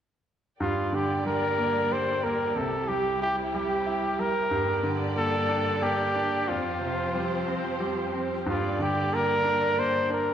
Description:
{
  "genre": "pop",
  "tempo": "61 BPM (dotted quarters)",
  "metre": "6/8",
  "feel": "straight",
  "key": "G dorian",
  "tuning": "A4 = 442 Hz",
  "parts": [
    { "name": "clear flugelhorn", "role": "melody", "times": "0.6-10.3 s", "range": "F4 to C5", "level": "-27 LUFS", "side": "equal", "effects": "none" },
    { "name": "clear concert grand piano", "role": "accompaniment", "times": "0.6-10.3 s", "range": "F2 to E4", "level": "-30 LUFS", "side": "right 1 dB", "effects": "none" },
    { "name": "warm studio string section", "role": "sustained chords", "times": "0.6-10.3 s", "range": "C2 to D5", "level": "-32 LUFS", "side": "equal", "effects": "none" }
  ],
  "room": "wet recital hall reverb, RT60 1.7 s",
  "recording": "recorded in a church or concert hall",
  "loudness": "-24 LUFS",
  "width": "side -9 dB against mid",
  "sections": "0.6-10.3 A section",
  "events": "none",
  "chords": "0.6 Gm; 2.6 C; 4.5 Gm; 6.5 Fsus2; 8.5 Gm"
}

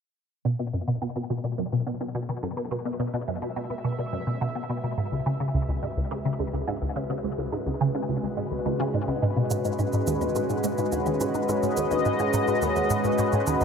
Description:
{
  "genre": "ambient, sequencer-driven space music",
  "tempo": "106 BPM",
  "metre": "4/4",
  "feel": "straight",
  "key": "unclear",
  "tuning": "A4 = 440 Hz",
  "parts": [
    { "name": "sweeping resonant pad", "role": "sustained chords", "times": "0.5-13.6 s", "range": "G#3 to E5", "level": "-28 LUFS", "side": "equal", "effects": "chorus" },
    { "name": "resonant blip pluck", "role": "riff", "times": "0.5-13.6 s", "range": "C#2 to C#3", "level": "-27 LUFS", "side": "equal", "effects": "phaser, ensemble chorus, ping-pong delay" },
    { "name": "shaker and woodblock", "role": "percussion", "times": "9.5-13.6 s", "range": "none", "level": "-39 LUFS", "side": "right 4 dB", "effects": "ping-pong delay" }
  ],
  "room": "wet huge ambient reverb, RT60 8.0 s",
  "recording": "none",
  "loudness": "-24 LUFS",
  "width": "side -6 dB against mid",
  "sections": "0.5-13.6 A section",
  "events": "fade-in on analog synth pad 0.5-13.6",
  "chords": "0.5 Bsus2; 5.0 C#m; 9.5 G#m"
}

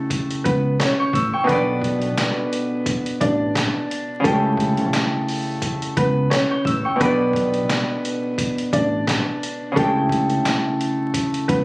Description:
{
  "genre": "hip hop, boom-bap hip-hop",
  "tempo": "87 BPM",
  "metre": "4/4",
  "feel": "swing 55% on 16ths",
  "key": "B minor",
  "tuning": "A4 = 440 Hz",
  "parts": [
    { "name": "warm upright piano", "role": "melody", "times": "0.0-11.6 s", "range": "A3 to D5", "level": "-23 LUFS", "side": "equal", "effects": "high-pass filter, low-pass filter, analog delay" },
    { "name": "Celtic harp", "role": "accompaniment", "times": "0.0-11.6 s", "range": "B2 to G6", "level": "-22 LUFS", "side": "equal", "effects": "cassette tape, high-pass filter, low-pass filter" },
    { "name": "trip hop sampler-style drum kit", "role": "drums", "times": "0.1-11.6 s", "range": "handclaps, hi-hat, kick drum, snare drum", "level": "-24 LUFS", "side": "equal", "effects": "none" },
    { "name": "deep dub fingered electric bass", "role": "bass", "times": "0.5-11.6 s", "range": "A1 to C#2", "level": "-23 LUFS", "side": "equal", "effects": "none" }
  ],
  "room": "studio reverb",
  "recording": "recorded on a phone in the room, vinyl crackle, compression",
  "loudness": "-18 LUFS",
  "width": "side -24 dB against mid",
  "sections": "0.0-11.6 A section",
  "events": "none",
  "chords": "0.0 C#dim; 1.5 Bm7; 4.2 C#dim; 7.0 Bm7; 9.8 C#dim"
}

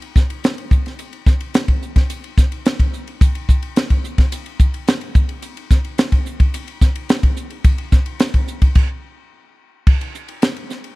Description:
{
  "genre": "jazz",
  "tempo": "108 BPM",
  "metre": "4/4",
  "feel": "straight",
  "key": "none",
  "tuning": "none",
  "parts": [
    { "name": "crisp fusion drum kit", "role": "drums", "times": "0.0-11.0 s", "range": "crash cymbal, hi-hat, kick drum, ride cymbal, snare drum", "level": "-14 LUFS", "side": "equal", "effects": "none" }
  ],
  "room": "little or no reverb",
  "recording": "dry, close 1970s-style studio recording",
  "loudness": "-15 LUFS",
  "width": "side -22 dB against mid",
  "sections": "0.0-9.9 A section; 9.9-11.0 B section",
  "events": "stop 8.8-9.9",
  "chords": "none"
}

